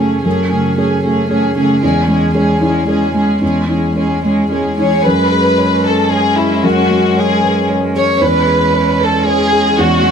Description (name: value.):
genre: neoclassical piano and strings.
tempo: 114 BPM.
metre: 3/4.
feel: rubato.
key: unclear.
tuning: A4 = 440 Hz.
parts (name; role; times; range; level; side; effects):
dark chamber violin section; melody; 0.0-10.1 s; E4 to C#5; -15 LUFS; left 1 dB; none.
warm cello; second line; 0.0-10.1 s; G#3 to A3; -20 LUFS; right 4 dB; none.
felt-muted upright piano; accompaniment; 0.0-10.1 s; E2 to C#5; -15 LUFS; equal; none.
warm viola; accompaniment; 0.0-10.1 s; C#4; -20 LUFS; left 1 dB; none.
room: moderate studio reverb, RT60 0.6 s.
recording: none.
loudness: -11 LUFS.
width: side -7 dB against mid.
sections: 0.0-5.0 A section; 5.0-10.1 B section.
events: none.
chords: 0.0 F#madd9; 1.8 C#m/E; 5.0 F#sus2; 8.2 C#m/E.